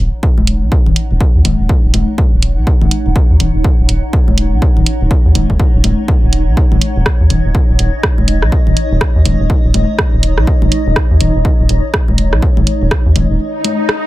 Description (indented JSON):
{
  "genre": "minimal techno",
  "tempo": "123 BPM",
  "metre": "4/4",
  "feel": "swing 60% on 16ths",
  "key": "Eb minor",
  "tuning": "A4 = 441 Hz",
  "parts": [
    { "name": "rubbery square bass", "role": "bass", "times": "0.0-13.4 s", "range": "Eb1 to Eb2", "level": "-12 LUFS", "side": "equal", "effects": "sidechain pumping" },
    { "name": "granular cloud pad", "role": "texture", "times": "0.2-14.1 s", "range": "Eb4 to Gb5", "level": "-22 LUFS", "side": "right 1 dB", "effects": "built-in reverb, sidechain pumping" },
    { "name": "electronic kick drum", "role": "drums", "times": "0.2-13.0 s", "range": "none", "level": "-12 LUFS", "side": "equal", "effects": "none" },
    { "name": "congas", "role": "percussion", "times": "0.4-13.8 s", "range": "none", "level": "-21 LUFS", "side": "left 5 dB", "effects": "overdrive, tape echo" },
    { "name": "punchy analog drum machine", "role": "drums", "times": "0.5-14.0 s", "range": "hi-hat, rim click", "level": "-16 LUFS", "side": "right 2 dB", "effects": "none" },
    { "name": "swell", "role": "sound effects", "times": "13.5-14.1 s", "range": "none", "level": "-18 LUFS", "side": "left 4 dB", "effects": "none" }
  ],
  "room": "little or no reverb",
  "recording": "none",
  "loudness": "-10 LUFS",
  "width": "side -17 dB against mid",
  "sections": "0.0-14.1 A section",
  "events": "fade-in on ambient pad 0.0-14.1; break 13.4-14.1; swell 13.5-14.1",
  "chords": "0.0 Ebm7",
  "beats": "0.23 | 0.72 1.21 1.69 2.18 | 2.67 3.16 3.65 4.13 | 4.62 5.11 5.60 6.08 | 6.57 7.06 7.55 8.04 | 8.52 9.01 9.50 9.99 | 10.47 10.96 11.45 11.94 | 12.43 12.91 13.40 13.89"
}